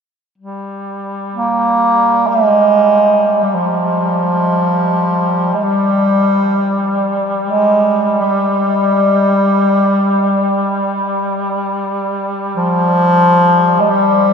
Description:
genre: caucasian folk, Caucasian lament.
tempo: free time.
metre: none.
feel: none.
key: G phrygian.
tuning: A4 = 443 Hz.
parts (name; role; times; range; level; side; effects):
clear duduk; drone; 0.4-14.3 s; G3; -20 LUFS; equal; none.
clear bass clarinet; melody; 1.4-14.3 s; F3 to Bb3; -12 LUFS; equal; none.
room: wet huge ambient reverb, RT60 8.2 s.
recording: in a vast, echoing space.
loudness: -11 LUFS.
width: side -6 dB against mid.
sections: 0.4-14.3 A section.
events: none.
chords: none.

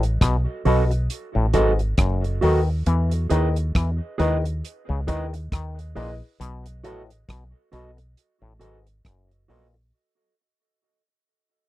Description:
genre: roots reggae.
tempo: 68 BPM.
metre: 4/4.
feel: swing 58% on 16ths.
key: unclear.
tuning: A4 = 441 Hz.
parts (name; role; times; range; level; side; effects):
auto-wah clav; riff; 0.0-9.8 s; F#2 to E3; -30 LUFS; left 5 dB; overdrive.
deep dub fingered electric bass; bass; 0.0-9.9 s; F#1 to E2; -22 LUFS; equal; none.
damped 70s drum kit; drums; 0.0-9.7 s; hi-hat, kick drum, rim click; -22 LUFS; equal; none.
mellow electric guitar; accompaniment; 0.7-9.8 s; F#4 to D#5; -27 LUFS; right 5 dB; dub echo.
dark upright piano; stabs; 0.7-9.7 s; E4 to D#5; -28 LUFS; left 7 dB; none.
room: little or no reverb.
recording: dry, close 1970s-style studio recording.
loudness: -20 LUFS.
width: side -15 dB against mid.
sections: 0.0-9.9 A section.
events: fade-out 0.0-9.9.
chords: 0.0 B7; 2.9 Emaj7; 6.4 B7.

